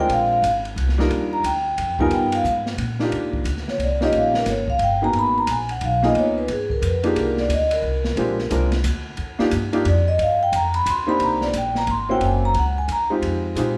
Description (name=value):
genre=jazz, small-group swing and bop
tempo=178 BPM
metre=3/4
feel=swing 63% on 8ths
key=Eb major from 3.1 s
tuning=A4 = 440 Hz
part: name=vibraphone with soft mallets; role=melody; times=0.0-13.0 s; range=Ab4 to C6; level=-23 LUFS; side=equal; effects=none
part: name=warm upright piano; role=accompaniment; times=0.0-13.8 s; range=G3 to Bb4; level=-25 LUFS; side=equal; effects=none
part: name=upright bass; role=bass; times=0.0-13.8 s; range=F#1 to Bb2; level=-27 LUFS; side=equal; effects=none
part: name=open jazz drum kit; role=drums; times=0.1-13.7 s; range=hi-hat, kick drum, ride cymbal, snare drum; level=-32 LUFS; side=equal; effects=none
room=moderate large studio reverb, RT60 0.9 s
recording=band playing live in one room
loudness=-21 LUFS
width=mono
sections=0.0-3.1 A section; 3.1-11.2 B section; 11.2-13.8 B section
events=vibraphone solo 3.1-13.8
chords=0.1 Bb9; 1.1 Ebmaj7; 2.1 G7alt; 2.8 Bb6; 3.1 Ebmaj9; 4.1 Eb7; 5.1 Abm7; 6.1 Db13; 7.2 Cm11; 8.2 Bb13; 9.2 Ebmaj9; 11.2 Cm9; 12.2 F#7#11; 13.2 Fm7